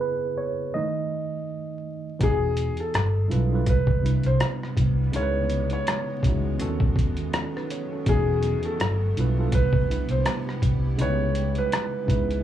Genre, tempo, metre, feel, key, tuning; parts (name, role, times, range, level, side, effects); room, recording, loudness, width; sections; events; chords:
lo-fi hip hop; 82 BPM; 4/4; swing 55% on 16ths; A4 = 440 Hz
tine electric piano; accompaniment; 0.0-12.4 s; C3 to D#5; -28 LUFS; right 2 dB; medium stereo tremolo, cassette tape, plate reverb
felt-muted upright piano; melody; 2.2-12.4 s; G#4 to C#5; -28 LUFS; equal; tape echo, plate reverb
granular cloud pad; sustained chords; 3.1-12.4 s; C3 to G4; -36 LUFS; left 1 dB; built-in reverb
vintage muted fingered electric bass; bass; 2.2-12.4 s; E1 to D#2; -24 LUFS; equal
boom bap sampler-style drum kit; drums; 2.2-12.4 s; hi-hat, kick drum, rim click; -25 LUFS; equal
light reverb; vinyl crackle, low-pass filter, small room reverb; -22 LUFS; side -11 dB against mid
0.0-2.2 A section; 2.2-12.4 B section
tine electric piano solo 0.0-2.2; filter sweep 0.0-2.2
0.0 C#m7; 0.7 N.C.; 2.2 Emaj7; 2.9 G13; 3.7 Cmaj7; 5.1 C#m7; 6.6 B7/D#; 8.1 Emaj7; 8.8 G13; 9.5 Cmaj7; 11.0 C#m7